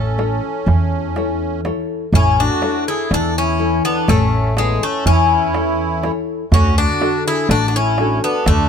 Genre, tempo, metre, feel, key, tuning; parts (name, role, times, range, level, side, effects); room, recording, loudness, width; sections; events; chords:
greek folk, Greek bouzouki band; 123 BPM (eighths); 9/8; straight; A major; A4 = 440 Hz
Greek bouzouki; melody; 0.0-8.7 s; G#3 to A4; -19 LUFS; left 5 dB
accordion; second line; 0.0-8.7 s; B3 to A4; -24 LUFS; right 6 dB; light tremolo tuning
nylon-string guitar; accompaniment; 0.0-8.7 s; D3 to C#5; -22 LUFS; left 3 dB
upright bass; bass; 0.0-8.7 s; A1 to E2; -20 LUFS; equal
darbuka; percussion; 0.2-8.7 s; -18 LUFS; right 2 dB
little or no reverb; close, detailed microphones; -14 LUFS; side -7 dB against mid
0.0-2.1 A section; 2.1-8.7 B section
0.0 A; 6.5 D